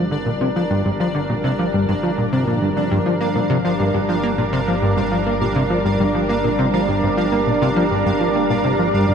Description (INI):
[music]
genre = ambient, sequencer-driven space music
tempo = 102 BPM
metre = 4/4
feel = straight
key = G minor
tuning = A4 = 443 Hz
[part]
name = lush unison pad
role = sustained chords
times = 0.0-9.1 s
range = G3 to D5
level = -21 LUFS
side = right 1 dB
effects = chorus
[part]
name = concert harp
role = arpeggios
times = 0.0-9.1 s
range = G2 to D4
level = -27 LUFS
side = left 1 dB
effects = none
[part]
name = plucky analog bass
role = riff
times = 0.0-9.1 s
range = G2 to Bb3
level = -20 LUFS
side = equal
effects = wide subtle chorus, ping-pong delay
[part]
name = analog drone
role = bass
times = 0.0-9.1 s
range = G1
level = -31 LUFS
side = right 1 dB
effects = chorus
[part]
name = pulsing gated texture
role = texture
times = 0.0-9.1 s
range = D4 to F5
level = -28 LUFS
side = equal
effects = chorus, built-in reverb
[sound]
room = wet huge ambient reverb, RT60 7.4 s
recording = in a vast, echoing space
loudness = -16 LUFS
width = side -7 dB against mid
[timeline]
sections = 0.0-9.1 A section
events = fade-in on analog synth pad 0.0-9.1; fade-in on synth drone 0.0-9.1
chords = 0.0 Gm